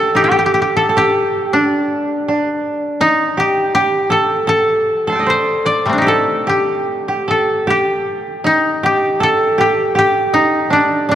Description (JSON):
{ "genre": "japanese traditional, Japanese chamber music", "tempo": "73-82 BPM", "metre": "2/4", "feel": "rubato", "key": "unclear", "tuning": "A4 = 440 Hz", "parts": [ { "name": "koto", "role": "melody", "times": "0.0-11.2 s", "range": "G3 to D5", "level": "-16 LUFS", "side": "left 2 dB", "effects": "none" }, { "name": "koto", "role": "second line", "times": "0.0-11.2 s", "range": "D4 to C6", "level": "-16 LUFS", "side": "right 2 dB", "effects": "none" } ], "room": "wet church reverb, RT60 3.6 s", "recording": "worn, warbling old tape, cassette tape, warbly pitch drift", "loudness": "-13 LUFS", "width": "side -11 dB against mid", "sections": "0.0-11.2 A section", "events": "none", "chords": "none" }